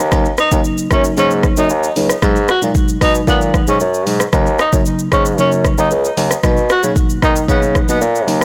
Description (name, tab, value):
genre	afrobeats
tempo	114 BPM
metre	4/4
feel	straight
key	Eb minor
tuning	A4 = 438 Hz
part	warm bassoon	bass	0.0-8.4 s	Db2 to D#3	-19 LUFS	equal	none
part	afro-pop drum kit	drums	0.0-8.4 s	hi-hat, kick drum, rim click, shaker	-19 LUFS	equal	soft clipping on snare
part	crystalline FM electric piano	accompaniment	0.1-8.4 s	Cb3 to Eb4	-22 LUFS	equal	chorus, phaser
part	breathy tenor saxophone	melody	0.4-8.0 s	B3 to Gb4	-21 LUFS	equal	tape echo
room	digital ambience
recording	blown-out, overdriven recording, overdrive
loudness	-14 LUFS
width	mono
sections	0.0-8.4 A section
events	none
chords	0.0 Ebm7; 2.2 Abm7; 4.3 Ebm7; 6.4 Bmaj7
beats	| 0.12 0.65 1.17 1.70 | 2.22 2.75 3.28 3.80 | 4.33 4.86 5.38 5.91 | 6.43 6.96 7.49 8.01